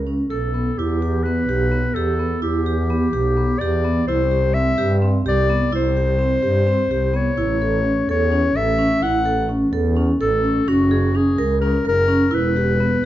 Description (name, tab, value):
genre	contemporary instrumental, chamber music in an uneven meter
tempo	254 BPM (eighths)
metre	7/8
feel	straight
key	E minor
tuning	A4 = 440 Hz
part	clear clarinet	melody	0.0-13.1 s	F#4 to F#5	-22 LUFS	left 3 dB	none
part	warm double bass	bass	0.0-13.0 s	E1 to G2	-21 LUFS	equal	none
part	vibraphone with medium mallets	arpeggios	0.1-12.9 s	B3 to A#4	-21 LUFS	right 3 dB	none
room	light reverb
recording	dark, warm production, nothing above 7.5 kHz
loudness	-16 LUFS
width	side -13 dB against mid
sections	0.8-13.1 A section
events	none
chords	0.3 Asus2/B; 0.8 Em; 4.1 C5; 7.4 A; 10.7 F#add9; 12.3 Em